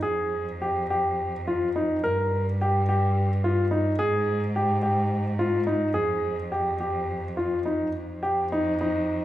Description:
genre	contemporary instrumental, chamber music in an uneven meter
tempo	212 BPM (eighths)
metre	7/8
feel	straight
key	F minor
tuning	A4 = 441 Hz
part	clear grand piano	arpeggios	0.0-9.2 s	Eb4 to Bb4	-25 LUFS	equal	none
part	rich cello	bass	0.0-9.2 s	F2 to Ab2	-28 LUFS	equal	none
room	moderate recital hall reverb, RT60 1.6 s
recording	recorded in a church or concert hall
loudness	-23 LUFS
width	side -13 dB against mid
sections	0.0-8.0 A section; 8.0-9.2 B section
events	none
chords	0.0 Fmadd9; 2.0 Eb/G (rootless); 4.0 Ab5; 6.0 Fm9

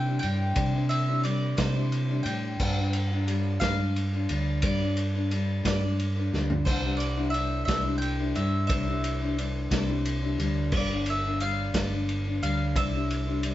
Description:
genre	folk rock and heartland rock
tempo	59 BPM (dotted quarters)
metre	6/8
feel	straight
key	C major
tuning	A4 = 437 Hz
part	mandolin	melody	0.0-13.5 s	C5 to G5	-33 LUFS	equal	none
part	picked steel-string acoustic guitar	accompaniment	0.0-13.5 s	C3 to C5	-31 LUFS	left 3 dB	none
part	fingered electric bass	bass	0.0-13.5 s	G1 to C3	-28 LUFS	right 1 dB	none
part	vintage drum kit	drums	0.2-13.5 s	crash cymbal, kick drum, ride cymbal, snare drum, toms	-32 LUFS	equal	none
room	moderate studio reverb, RT60 0.7 s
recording	band playing live in one room, nothing above 7.8 kHz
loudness	-25 LUFS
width	side -14 dB against mid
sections	0.0-13.5 A section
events	drum fill 6.3-6.7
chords	0.0 Cadd9; 2.6 G7; 6.7 Cadd9; 10.7 G7; 12.8 Cadd9

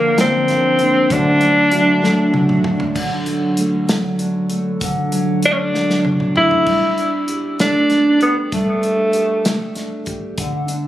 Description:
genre	six-eight pop ballad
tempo	65 BPM (dotted quarters)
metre	6/8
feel	straight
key	unclear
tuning	A4 = 440 Hz
part	warm tenor saxophone	melody	0.0-2.7, 5.5-9.7 s	A3 to E4	-15 LUFS	equal	digital delay
part	nylon-string guitar	accompaniment	0.0-10.9 s	D3 to G4	-20 LUFS	right 1 dB	double-tracked left and right
part	fingerpicked steel-string acoustic guitar	arpeggios	0.0-3.0 s	D3 to Bb4	-20 LUFS	left 2 dB	digital delay
part	natural country drum kit	drums	0.2-10.8 s	crash cymbal, hi-hat, kick drum, snare drum, toms	-23 LUFS	equal	none
room	light reverb, studio ambience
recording	recorded on a phone in the room, club reverb, compression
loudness	-14 LUFS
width	side -13 dB against mid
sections	0.0-3.0 A section; 3.0-6.7 B section; 6.7-10.9 C section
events	drum fill 2.0-3.0, 5.7-6.7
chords	0.0 Bb/D; 1.1 D; 6.7 Gsus2

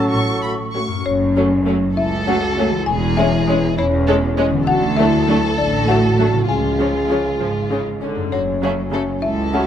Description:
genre	cinematic, playful, whimsical film cue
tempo	66 BPM (dotted quarters)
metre	6/8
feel	straight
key	F# minor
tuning	A4 = 441 Hz
part	folk marimba with medium hard mallets	melody	0.0-9.7 s	C#5 to G#5	-23 LUFS	left 4 dB	none
part	rich chamber violin section	melody	0.0-9.7 s	E4 to C#6	-25 LUFS	left 2 dB	none
part	dark cor anglais	second line	0.0-0.7 s	A4	-27 LUFS	right 2 dB	none
part	mellow hollow small flute group	second line	0.0-0.7 s	C#6	-30 LUFS	left 3 dB	none
part	warm clarinet	second line	0.0-0.7 s	C#4	-26 LUFS	right 1 dB	none
part	warm studio violin section	second line	0.0-9.6 s	A3 to F#4	-25 LUFS	left 3 dB	none
part	rich chamber viola section	accompaniment	0.0-9.6 s	C#3 to A3	-24 LUFS	right 2 dB	none
part	warm bassoon	accompaniment	0.0-0.7 s	F#3	-27 LUFS	right 2 dB	none
part	concert harp	arpeggios	0.0-9.7 s	F#2 to C#5	-25 LUFS	left 6 dB	none
part	rich symphonic cello section	bass	0.0-9.7 s	C#2 to A2	-23 LUFS	right 2 dB	none
part	rich chamber double bass section	bass	0.1-9.7 s	E1 to D2	-24 LUFS	right 4 dB	none
part	dark French horn section	sustained chords	0.4-9.7 s	A3 to G#4	-22 LUFS	left 1 dB	none
room	moderate scoring stage reverb, RT60 1.9 s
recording	none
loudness	-15 LUFS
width	side -9 dB against mid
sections	0.0-1.0 A section; 1.0-9.7 B section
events	none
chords	0.0 F#m/A; 1.0 F#m; 2.9 C#m/E; 4.7 D; 6.5 C#; 8.3 F#m

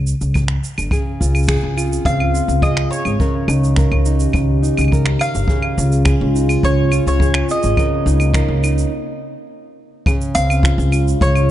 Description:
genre	folktronica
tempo	105 BPM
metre	4/4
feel	straight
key	Db lydian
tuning	A4 = 436 Hz
part	upright bass	bass	0.0-11.5 s	G1 to Db2	-17 LUFS	equal	none
part	shaker, claves and finger snaps	drums	0.1-11.5 s	none	-25 LUFS	right 2 dB	none
part	kick drum	drums	0.4-11.3 s	none	-19 LUFS	equal	none
part	warbly tape-like pad	sustained chords	1.7-11.5 s	Db3 to G4	-24 LUFS	left 1 dB	chorus, built-in reverb
part	nylon-string guitar	arpeggios	0.9-11.5 s	Db3 to Bb4	-23 LUFS	equal	analog delay
part	mandolin	melody	2.1-11.5 s	Db5 to F5	-23 LUFS	right 1 dB	analog delay
room	light reverb, small room ambience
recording	nothing above 10.7 kHz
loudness	-14 LUFS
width	side -12 dB against mid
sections	0.0-10.1 A section; 10.1-11.5 B section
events	break 8.9-10.1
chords	0.0 N.C.; 0.9 Dbmaj7; 3.2 Eb7/Db; 5.5 Dbmaj7; 7.8 Cm7/Db; 10.1 Dbmaj7

